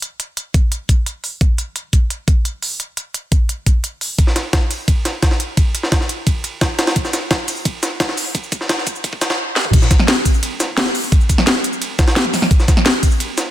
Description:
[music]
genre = drum and bass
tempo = 173 BPM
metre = 4/4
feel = straight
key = none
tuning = none
[part]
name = drum and bass drum kit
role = drums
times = 0.0-13.4 s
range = crash cymbal, hi-hat, shaker, snare drum, toms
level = -18 LUFS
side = equal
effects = none
[part]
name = electronic kick drum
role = drums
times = 0.5-13.1 s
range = none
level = -14 LUFS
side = equal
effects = none
[part]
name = jungle sampler-style drum kit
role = drums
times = 4.2-13.5 s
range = hi-hat, ride cymbal, snare drum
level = -21 LUFS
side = equal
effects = overdrive, high-pass filter on cymbals, high-pass filter on snare, high-pass filter on hats
[sound]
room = light reverb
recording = dense, heavily limited modern master, high-pass filter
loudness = -15 LUFS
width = side -13 dB against mid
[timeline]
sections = 0.0-4.2 A section; 4.2-9.7 B section; 9.7-13.5 C section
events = build-up 4.2-9.7; filter sweep 4.2-9.7; drum fill 7.0-9.4, 9.6; drop 9.7-13.5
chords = none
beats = | 0.02 0.37 0.72 1.06 | 1.41 1.76 2.10 2.45 | 2.80 3.15 3.49 3.84 | 4.18 4.53 4.88 5.23 | 5.57 5.92 6.27 6.61 | 6.96 7.31 7.65 8.00 | 8.35 8.69 9.04 9.39 | 9.73 10.08 10.43 10.78 | 11.12 11.47 11.81 12.16 | 12.51 12.86 13.20

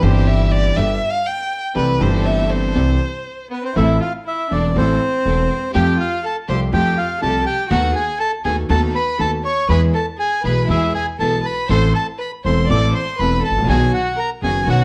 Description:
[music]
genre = tango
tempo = 121 BPM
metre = 4/4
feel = rubato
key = C major, A minor from 3.8 s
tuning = A4 = 439 Hz
[part]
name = warm violin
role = second line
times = 0.0-14.8 s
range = B3 to G5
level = -26 LUFS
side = equal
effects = none
[part]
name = warm concert grand piano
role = accompaniment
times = 0.0-14.8 s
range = E1 to A4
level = -23 LUFS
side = equal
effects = none
[part]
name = rich studio string section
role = stabs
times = 0.0-14.8 s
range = A3 to A4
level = -30 LUFS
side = equal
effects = none
[part]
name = upright bass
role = bass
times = 0.0-14.8 s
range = E1 to F2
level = -22 LUFS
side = equal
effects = none
[part]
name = bandoneon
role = melody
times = 3.5-14.8 s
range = B4 to D6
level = -23 LUFS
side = equal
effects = slapback echo
[sound]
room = moderate large studio reverb, RT60 0.9 s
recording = dark, warm production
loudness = -18 LUFS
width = mono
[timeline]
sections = 0.0-3.8 A section; 3.8-14.8 B section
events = violin solo 0.0-3.8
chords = 0.0 C/G; 0.8 G; 1.8 C6; 3.8 Am; 5.7 Fadd9; 7.7 B7/D#; 9.7 E; 11.7 Am; 13.7 B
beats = 0.27 0.76 1.26 | 1.75 2.25 2.75 3.26 | 3.76 4.26 4.76 5.25 | 5.75 6.24 6.73 7.22 | 7.71 8.21 8.70 9.20 | 9.70 10.19 10.69 11.19 | 11.70 12.20 12.70 13.19 | 13.69 14.18 14.68

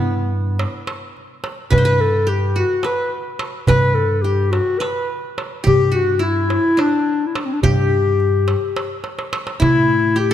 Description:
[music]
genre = Turkish makam ensemble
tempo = 212 BPM (eighths)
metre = 7/8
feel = straight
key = G makam rast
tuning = A4 = 440 Hz
[part]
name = dark clarinet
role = melody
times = 0.0-10.3 s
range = B3 to B4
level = -18 LUFS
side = left 4 dB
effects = none
[part]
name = qanun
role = second line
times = 0.0-10.3 s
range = B3 to C5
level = -25 LUFS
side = right 4 dB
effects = none
[part]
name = upright bass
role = bass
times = 0.0-10.3 s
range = G2 to A2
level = -20 LUFS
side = equal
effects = none
[part]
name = darbuka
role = percussion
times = 0.0-10.3 s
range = none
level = -22 LUFS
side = right 2 dB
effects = none
[sound]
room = moderate concert hall reverb, RT60 2.3 s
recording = none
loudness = -15 LUFS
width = side -10 dB against mid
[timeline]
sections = 0.0-9.6 A section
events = drum fill 9.1-9.6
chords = none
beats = 0.02 0.31 0.59 0.87 1.15 1.43 | 1.72 2.00 2.28 2.56 2.84 3.12 3.41 | 3.69 3.97 4.25 4.54 4.82 5.10 5.38 | 5.66 5.95 6.23 6.51 6.79 7.08 7.36 | 7.64 7.92 8.21 8.49 8.77 9.05 9.34 | 9.62 9.90 10.19

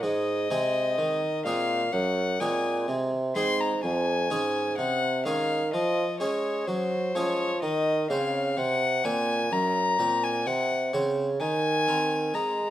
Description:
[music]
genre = classical, baroque-style sonata movement with continuo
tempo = 63 BPM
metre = 4/4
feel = straight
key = unclear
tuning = A4 = 438 Hz
[part]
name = rich violin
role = melody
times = 0.0-12.7 s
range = C5 to C6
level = -28 LUFS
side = left 3 dB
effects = none
[part]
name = harpsichord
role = accompaniment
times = 0.0-12.7 s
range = F2 to C5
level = -32 LUFS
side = right 1 dB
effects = none
[part]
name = mellow bassoon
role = bass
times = 0.0-12.7 s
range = F2 to Ab3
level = -28 LUFS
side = right 2 dB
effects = none
[sound]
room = light reverb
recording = close, detailed microphones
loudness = -24 LUFS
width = side -12 dB against mid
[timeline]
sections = 0.0-12.7 A section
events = none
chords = 0.0 Ab; 1.9 Ab7/Gb; 3.8 Db/F; 7.6 Cdim; 11.4 Cm7/Eb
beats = | 0.03 0.98 1.93 2.88 | 3.83 4.78 5.73 6.67 | 7.62 8.57 9.52 10.46 | 11.40 12.34

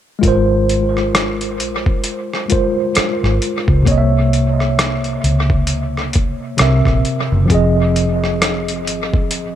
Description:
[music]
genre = R&B, neo-soul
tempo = 66 BPM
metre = 4/4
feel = swing 59% on 16ths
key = Ab major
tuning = A4 = 440 Hz
[part]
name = tine electric piano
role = accompaniment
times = 0.2-9.6 s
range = C3 to E5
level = -17 LUFS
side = equal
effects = overdrive, fast stereo tremolo, dub echo
[part]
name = vintage muted fingered electric bass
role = bass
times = 0.2-9.6 s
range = F1 to Db2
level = -18 LUFS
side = equal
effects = none
[part]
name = dusty soul sampler-style drum kit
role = drums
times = 0.2-9.6 s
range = hi-hat, kick drum, rim click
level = -18 LUFS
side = equal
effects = overdrive, dub echo
[sound]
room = light reverb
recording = echo-heavy mix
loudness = -13 LUFS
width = side -11 dB against mid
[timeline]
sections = 0.2-9.6 A section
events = none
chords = 0.2 Ab69; 3.9 C7b9; 6.6 C7; 7.5 Fm7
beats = | 0.22 1.13 2.04 2.95 | 3.86 4.77 5.68 6.59 | 7.50 8.41 9.31

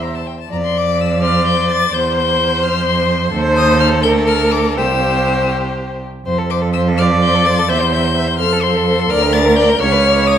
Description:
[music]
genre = quick classical-period movement for string quartet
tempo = 84 BPM (dotted quarters)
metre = 6/8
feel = straight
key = F major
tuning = A4 = 440 Hz
[part]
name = rich violin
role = melody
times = 0.0-10.4 s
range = G5 to A6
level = -20 LUFS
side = left 8 dB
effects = none
[part]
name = clear violin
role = second line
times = 0.0-10.4 s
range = G4 to E5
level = -20 LUFS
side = left 4 dB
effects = none
[part]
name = rich viola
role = accompaniment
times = 0.0-10.4 s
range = A4 to E5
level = -17 LUFS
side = right 1 dB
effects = none
[part]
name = rich cello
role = bass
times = 0.0-10.4 s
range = C2 to F2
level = -17 LUFS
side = right 3 dB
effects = none
[sound]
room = wet recital hall reverb, RT60 1.2 s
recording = none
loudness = -12 LUFS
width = side -9 dB against mid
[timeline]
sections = 0.0-6.3 A section; 6.3-10.4 B section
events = none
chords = 0.5 F5; 1.9 C/E; 2.6 F5; 3.3 F7/Eb (rootless); 4.0 Bb/D; 4.8 C; 6.3 F; 7.7 C/E; 8.4 F; 9.1 Bb/D; 9.8 Db7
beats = | 0.50 1.22 | 1.93 2.63 | 3.33 4.04 | 4.77 5.51 | 6.26 6.97 | 7.68 8.39 | 9.10 9.80

